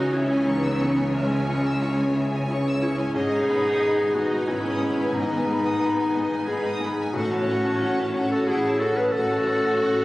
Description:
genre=cinematic, emotional film score for orchestra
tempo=90 BPM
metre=3/4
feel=rubato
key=C# minor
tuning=A4 = 440 Hz
part: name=clear studio violin section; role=melody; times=0.0-10.0 s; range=G#5 to C#6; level=-40 LUFS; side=left 2 dB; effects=none
part: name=clear clarinet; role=second line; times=0.0-10.0 s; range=C#4 to B4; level=-24 LUFS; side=equal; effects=none
part: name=rich studio violin section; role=second line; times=0.0-10.0 s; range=A4 to E6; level=-32 LUFS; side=left 2 dB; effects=none
part: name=clear concert grand piano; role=accompaniment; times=0.0-10.0 s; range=C#2 to D#5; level=-28 LUFS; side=left 1 dB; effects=none
part: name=rich studio viola section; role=accompaniment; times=0.0-10.0 s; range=G#3 to G#4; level=-30 LUFS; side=equal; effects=none
part: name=concert harp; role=arpeggios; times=0.0-10.0 s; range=G#2 to C#6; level=-33 LUFS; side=left 1 dB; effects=none
part: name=dark studio double bass section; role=bass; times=0.0-10.0 s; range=G#1 to C#2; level=-33 LUFS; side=right 1 dB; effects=none
part: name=rich studio cello section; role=bass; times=0.0-10.0 s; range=G#2 to C#3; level=-31 LUFS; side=equal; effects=none
room=wet scoring stage reverb, RT60 1.5 s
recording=recorded on a phone in the room, club reverb, compression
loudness=-21 LUFS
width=side -18 dB against mid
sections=0.0-10.0 A section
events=none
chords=0.0 C#m; 3.1 G#m; 7.1 F#m/A

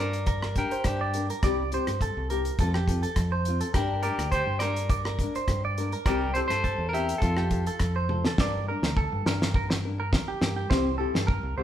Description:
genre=highlife guitar band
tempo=103 BPM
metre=4/4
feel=straight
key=G minor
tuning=A4 = 440 Hz
part: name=clean electric guitar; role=melody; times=0.0-8.1 s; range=D4 to D5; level=-30 LUFS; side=left 1 dB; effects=none
part: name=nylon-string guitar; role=accompaniment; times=0.0-11.6 s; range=F3 to Bb4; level=-32 LUFS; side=left 4 dB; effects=none
part: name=clean electric guitar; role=arpeggios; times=0.0-11.6 s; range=G4 to E5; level=-32 LUFS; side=right 5 dB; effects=none
part: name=fingered electric bass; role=bass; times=0.0-11.6 s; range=C2 to G2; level=-30 LUFS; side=equal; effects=none
part: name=damped 70s drum kit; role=drums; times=0.1-11.4 s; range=hi-hat, kick drum, rim click, snare drum, toms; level=-28 LUFS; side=equal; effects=none
room=moderate large studio reverb, RT60 0.9 s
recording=band playing live in one room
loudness=-24 LUFS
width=side -10 dB against mid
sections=0.0-8.4 A section; 8.4-11.6 B section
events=drum fill 8.1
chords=0.0 Gm; 1.4 C; 2.6 F; 3.7 Gm; 6.1 C; 7.2 F; 8.4 Gm; 10.7 C

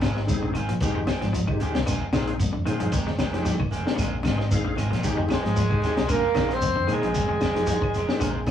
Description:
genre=afrobeat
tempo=114 BPM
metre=4/4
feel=swing 54% on 16ths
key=F dorian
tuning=A4 = 441 Hz
part: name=raspy alto saxophone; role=melody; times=0.0-0.5, 5.3-8.5 s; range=G4 to C5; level=-28 LUFS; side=right 4 dB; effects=none
part: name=growling trumpet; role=second line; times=0.0-0.5, 5.3-8.5 s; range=G3 to C4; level=-29 LUFS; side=equal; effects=none
part: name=clean electric guitar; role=arpeggios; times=0.0-8.4 s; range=C3 to Ab3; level=-33 LUFS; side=left 2 dB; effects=analog delay
part: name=electric guitar at the edge of break-up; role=stabs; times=0.0-8.5 s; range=Eb3 to G4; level=-33 LUFS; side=right 2 dB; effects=none
part: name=fingered electric bass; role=bass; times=0.0-8.5 s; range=F1 to Bb2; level=-29 LUFS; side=equal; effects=none
part: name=crunchy breakbeat drum kit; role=drums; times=0.0-8.5 s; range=hi-hat, kick drum, snare drum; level=-27 LUFS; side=left 1 dB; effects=none
part: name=claves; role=percussion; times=0.0-8.5 s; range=none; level=-43 LUFS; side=left 4 dB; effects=none
part: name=congas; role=percussion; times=0.0-8.5 s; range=none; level=-35 LUFS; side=equal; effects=none
part: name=shekere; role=percussion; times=0.0-8.5 s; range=none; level=-31 LUFS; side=right 1 dB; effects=none
part: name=bright tonewheel organ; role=accompaniment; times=0.3-8.5 s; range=Ab3 to Bb5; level=-31 LUFS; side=left 2 dB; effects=slow rotary speaker, chorus vibrato
room=moderate small room reverb, RT60 0.5 s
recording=rough rehearsal-room recording, tube saturation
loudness=-22 LUFS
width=side -10 dB against mid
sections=0.0-8.5 A section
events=tonewheel organ fill 4.0-5.0, 8.2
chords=0.0 Bb9sus4; 0.8 Fm9; 1.9 Bb9sus4; 2.9 Fm9; 4.0 Bb9sus4; 5.0 Fm9; 6.1 Bb9sus4; 7.2 Fm9

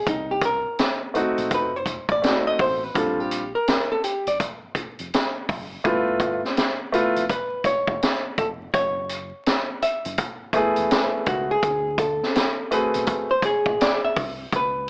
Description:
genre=hip hop, jazz-hop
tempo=83 BPM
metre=4/4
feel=swing 63% on 16ths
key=unclear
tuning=A4 = 442 Hz
part: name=hollow-body jazz guitar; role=melody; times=0.0-14.9 s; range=Eb4 to E5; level=-23 LUFS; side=equal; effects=none
part: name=deep dub fingered electric bass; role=bass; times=0.1-14.9 s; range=E1 to D2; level=-37 LUFS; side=equal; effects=none
part: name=vintage drum kit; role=drums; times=0.1-14.7 s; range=hi-hat, kick drum, snare drum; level=-24 LUFS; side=equal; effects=none
part: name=warm baby grand piano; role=accompaniment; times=1.1-13.3 s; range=G3 to G#4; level=-22 LUFS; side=equal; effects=none
room=moderate small room reverb, RT60 0.6 s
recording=worn, warbling old tape, cassette tape, vinyl crackle, warbly pitch drift, small speaker sound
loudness=-20 LUFS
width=side -37 dB against mid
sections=0.0-14.5 A section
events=hollow-body jazz guitar solo 0.0-14.5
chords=0.1 Cm7; 1.5 F7b9; 3.0 A#69; 5.8 G13; 8.7 F#m11; 11.6 D7#11

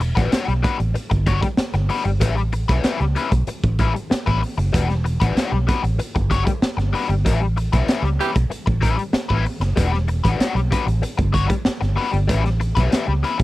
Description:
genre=funk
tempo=95 BPM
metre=4/4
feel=straight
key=E dorian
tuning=A4 = 440 Hz
part: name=crunchy overdriven guitar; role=accompaniment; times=0.0-13.4 s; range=G3 to C#5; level=-23 LUFS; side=left 6 dB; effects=wah
part: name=vintage muted fingered electric bass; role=bass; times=0.0-13.4 s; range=E1 to C#2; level=-20 LUFS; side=equal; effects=none
part: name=raw garage drum kit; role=drums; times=0.0-13.4 s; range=hi-hat, kick drum, snare drum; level=-22 LUFS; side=equal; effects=none
part: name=breathy tenor saxophone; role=second line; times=8.2-8.3 s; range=G4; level=-20 LUFS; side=right 9 dB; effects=none
room=little or no reverb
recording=dry, close 1970s-style studio recording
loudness=-18 LUFS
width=side -17 dB against mid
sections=0.0-13.4 A section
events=band accent 7.3-9.8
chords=0.0 Em9 (rootless); 2.2 A9; 4.7 Em9; 7.3 A9; 9.8 Em9; 12.3 A9

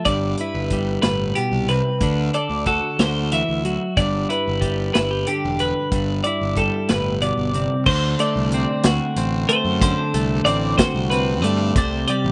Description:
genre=math rock and midwest emo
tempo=62 BPM (dotted quarters)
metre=6/8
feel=straight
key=G major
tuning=A4 = 439 Hz
part: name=twelve-string electric guitar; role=accompaniment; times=0.0-12.3 s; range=G2 to D5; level=-26 LUFS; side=equal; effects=none
part: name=twelve-string electric guitar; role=arpeggios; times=0.0-12.3 s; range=G4 to E5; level=-25 LUFS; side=equal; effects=none
part: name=fuzz fingered electric bass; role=bass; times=0.1-12.3 s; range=E1 to G2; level=-26 LUFS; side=equal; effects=overdrive
part: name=modern studio drum kit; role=drums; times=0.1-12.2 s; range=crash cymbal, hi-hat, kick drum, snare drum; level=-24 LUFS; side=equal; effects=none
room=little or no reverb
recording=recorded outdoors, with no room sound, nothing above 11.0 kHz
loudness=-20 LUFS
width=mono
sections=0.0-7.9 A section; 7.9-12.3 B section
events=none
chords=0.1 G6; 2.0 D9; 4.0 G6; 5.9 G69; 7.9 D7; 11.8 Csus2

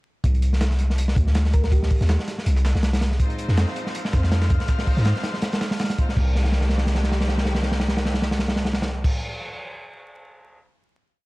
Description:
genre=drum and bass, jungle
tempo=162 BPM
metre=4/4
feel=swing 54% on 16ths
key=C minor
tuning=A4 = 440 Hz
part: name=long sustained 808-style bass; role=bass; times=0.2-9.1 s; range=C2 to Ab2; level=-20 LUFS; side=equal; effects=none
part: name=breakbeat sampler-style drum kit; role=drums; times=0.2-6.1 s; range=hi-hat, snare drum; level=-38 LUFS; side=right 2 dB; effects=high-pass filter on hats, high-pass filter on snare
part: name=crunchy breakbeat drum kit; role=drums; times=0.2-10.6 s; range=crash cymbal, hi-hat, kick drum, snare drum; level=-23 LUFS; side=equal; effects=none
part: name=thumb-piano-like synth pluck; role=melody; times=1.5-2.0 s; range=G4 to Bb4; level=-35 LUFS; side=equal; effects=chorus, dub echo
part: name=rich studio string section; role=sustained chords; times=3.2-9.1 s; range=Eb3 to C5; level=-32 LUFS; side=equal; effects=none
part: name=drifting glass-harmonics texture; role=texture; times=4.0-6.2 s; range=F5 to F6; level=-38 LUFS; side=left 4 dB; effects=chorus, built-in reverb
room=little or no reverb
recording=dark, warm production, vinyl crackle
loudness=-19 LUFS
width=side -21 dB against mid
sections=0.2-6.2 drop; 6.2-9.1 final chord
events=drop 0.2-6.2; drum fill 6.4-9.0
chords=0.2 N.C.; 3.2 Fm7; 6.2 Cm7

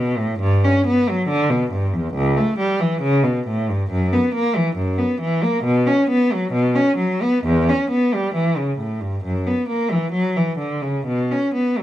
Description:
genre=classical, baroque-style suite movement for unaccompanied cello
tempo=68 BPM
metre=4/4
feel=uneven beats, rubato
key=B minor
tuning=A4 = 440 Hz
part: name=warm cello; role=solo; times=0.0-11.8 s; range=C#2 to C#4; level=-17 LUFS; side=equal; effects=none
room=moderate studio reverb, RT60 0.8 s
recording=none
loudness=-17 LUFS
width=side -13 dB against mid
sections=0.0-11.8 A section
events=none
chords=none

